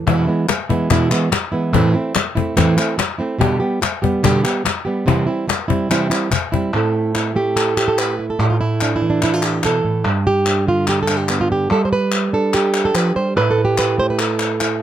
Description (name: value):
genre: flamenco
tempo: 144 BPM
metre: 4/4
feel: straight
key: A minor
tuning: A4 = 441 Hz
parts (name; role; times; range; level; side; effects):
- flamenco guitar; melody; 0.0-14.8 s; E2 to C5; -16 LUFS; right 2 dB; none
- cajon; percussion; 0.1-6.6 s; none; -20 LUFS; left 8 dB; none
- palmas hand claps; percussion; 0.1-14.8 s; none; -23 LUFS; left 3 dB; none
room: light reverb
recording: close, detailed microphones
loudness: -15 LUFS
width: side -10 dB against mid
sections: 0.1-6.7 A section; 6.7-14.8 B section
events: drum fill 5.9-6.7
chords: 0.1 E; 1.7 Am; 3.4 G/B; 5.1 C; 6.7 Am7; 10.1 Gadd9; 13.4 A7(no3)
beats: | 0.07 0.49 0.91 1.32 | 1.74 2.16 2.57 2.99 | 3.41 3.82 4.24 4.66 | 5.07 5.49 5.90 6.32 | 6.73 7.15 7.56 7.98 | 8.39 8.81 9.22 9.64 | 10.05 10.47 10.88 11.29 | 11.71 12.12 12.54 12.95 | 13.37 13.78 14.20 14.61